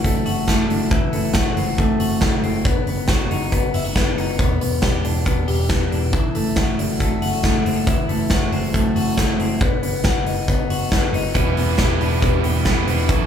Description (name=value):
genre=jangly indie pop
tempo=138 BPM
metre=4/4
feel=straight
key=E minor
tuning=A4 = 441 Hz
part: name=twelve-string electric guitar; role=arpeggios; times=0.0-13.3 s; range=E3 to G4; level=-22 LUFS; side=left 3 dB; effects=none
part: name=vintage muted picked electric bass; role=bass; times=0.0-13.3 s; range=E1 to F#1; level=-24 LUFS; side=right 1 dB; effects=none
part: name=big rock drum kit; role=drums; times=0.0-13.2 s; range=hi-hat, kick drum, snare drum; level=-20 LUFS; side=equal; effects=none
part: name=cranked stack guitar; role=accompaniment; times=11.3-13.3 s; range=F#2 to B4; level=-23 LUFS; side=right 5 dB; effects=overdrive
room=moderate large studio reverb, RT60 0.8 s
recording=band playing live in one room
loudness=-17 LUFS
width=side -8 dB against mid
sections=0.0-13.3 A section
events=none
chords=0.0 Dadd9/F#; 0.9 F#m7b5; 2.7 B/F#; 4.4 Em7; 6.1 Dadd9/F#; 7.9 F#m7b5; 9.6 B/F#; 11.4 Em7